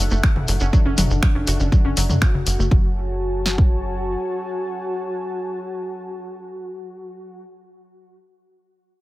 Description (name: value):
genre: melodic techno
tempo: 121 BPM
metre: 4/4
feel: straight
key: F# minor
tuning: A4 = 440 Hz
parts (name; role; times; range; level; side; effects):
- wide unison lead; melody; 0.0-7.4 s; D4 to F#4; -29 LUFS; equal; sidechain pumping, digital delay
- dark analog pad; sustained chords; 0.0-7.4 s; D4 to A5; -33 LUFS; equal; chorus, sidechain pumping
- warbly dusty pluck; arpeggios; 0.0-2.9 s; C#3 to F#4; -27 LUFS; left 1 dB; chorus, cassette tape, sidechain pumping, dub echo
- tight sequencer bass; bass; 0.0-4.2 s; F#1 to F#2; -22 LUFS; equal; sidechain pumping
- shekere; percussion; 0.1-2.7 s; none; -30 LUFS; equal; none
- house drum kit; drums; 0.2-3.7 s; kick drum, snare drum; -17 LUFS; equal; none
- house drum kit; drums; 0.2-2.6 s; finger snaps, hi-hat, toms; -24 LUFS; left 1 dB; sidechain pumping on hats, sidechain pumping on toms
room: digital ambience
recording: none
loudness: -18 LUFS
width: side -18 dB against mid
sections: 0.0-2.7 A section; 2.7-6.7 B section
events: drop 0.0-2.7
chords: 0.0 D/F#; 2.7 F#m